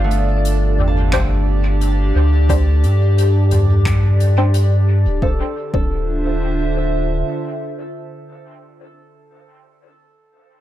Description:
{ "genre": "ambient dub", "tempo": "88 BPM", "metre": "4/4", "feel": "straight", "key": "D dorian", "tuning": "A4 = 440 Hz", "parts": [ { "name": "warbly tape-like pad", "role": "sustained chords", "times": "0.0-8.7 s", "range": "D3 to F5", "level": "-23 LUFS", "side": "equal", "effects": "chorus, built-in reverb, phaser, vintage 12-bit sampler grit" }, { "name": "concert harp", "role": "arpeggios", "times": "0.0-9.4 s", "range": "A3 to A5", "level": "-30 LUFS", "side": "right 2 dB", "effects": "dub echo" }, { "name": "filtered dub chord stab", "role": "stabs", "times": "0.0-9.4 s", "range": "C4 to C5", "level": "-27 LUFS", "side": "left 1 dB", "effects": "phaser, analog chorus, dub echo" }, { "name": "round analog bass", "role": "bass", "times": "0.0-7.2 s", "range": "D1 to G2", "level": "-15 LUFS", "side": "equal", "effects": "none" }, { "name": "backwards swelling texture", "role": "texture", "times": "0.0-5.2 s", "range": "A4", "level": "-35 LUFS", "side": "right 3 dB", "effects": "built-in reverb" }, { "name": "soft-mallet drum kit", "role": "drums", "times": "0.1-4.7 s", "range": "finger snaps, hi-hat, toms", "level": "-26 LUFS", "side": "equal", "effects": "dub echo" }, { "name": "electronic kick drum", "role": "drums", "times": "1.1-5.9 s", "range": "none", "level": "-21 LUFS", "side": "equal", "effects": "overdrive" } ], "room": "small room reverb", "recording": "echo-heavy mix", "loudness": "-14 LUFS", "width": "side -13 dB against mid", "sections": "0.0-5.2 A section; 5.2-8.0 B section", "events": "none", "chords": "0.0 Dm7", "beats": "0.45 1.13 1.81 | 2.50 3.18 3.86 4.54 | 5.22 5.91 6.59 7.27" }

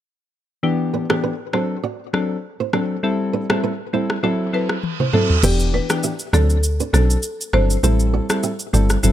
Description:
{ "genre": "afrobeats", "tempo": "100 BPM", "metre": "4/4", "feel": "swing 55% on 16ths", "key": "E minor", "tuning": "A4 = 440 Hz", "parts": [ { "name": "soft electric-piano-like synth keys", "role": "accompaniment", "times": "0.6-9.1 s", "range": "E3 to A4", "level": "-21 LUFS", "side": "left 2 dB", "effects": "chorus" }, { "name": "flamenco guitar", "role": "riff", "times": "0.9-8.8 s", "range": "C4 to E5", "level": "-26 LUFS", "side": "right 8 dB", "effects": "ping-pong delay" }, { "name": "afro-pop drum kit", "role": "drums", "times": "1.1-9.1 s", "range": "crash cymbal, rim click, shaker, toms", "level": "-23 LUFS", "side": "equal", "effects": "none" }, { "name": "reverse cymbal", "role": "sound effects", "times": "4.5-5.4 s", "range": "none", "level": "-28 LUFS", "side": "right 7 dB", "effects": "none" }, { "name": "buzzing marimba with medium mallets", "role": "melody", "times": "4.5-8.7 s", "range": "G4 to C5", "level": "-25 LUFS", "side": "right 1 dB", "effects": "ping-pong delay" }, { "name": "woody log drum bass", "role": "bass", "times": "5.4-9.1 s", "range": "E1 to D2", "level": "-16 LUFS", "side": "equal", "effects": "none" } ], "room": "digital ambience", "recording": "none", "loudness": "-17 LUFS", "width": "side -12 dB against mid", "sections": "0.6-5.4 A section; 5.4-9.1 B section", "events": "reverse cymbal 4.5-5.4; drum fill 4.8-5.4; kick muted 5.4-9.1", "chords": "0.6 Em7; 1.5 D7; 3.0 Am7; 4.2 F#m7b5; 5.4 Em7; 6.3 D7; 7.8 Am7", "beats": "| 0.63 1.23 1.83 2.43 | 3.03 3.63 4.23 4.83 | 5.43 6.03 6.63 7.23 | 7.83 8.43 9.03" }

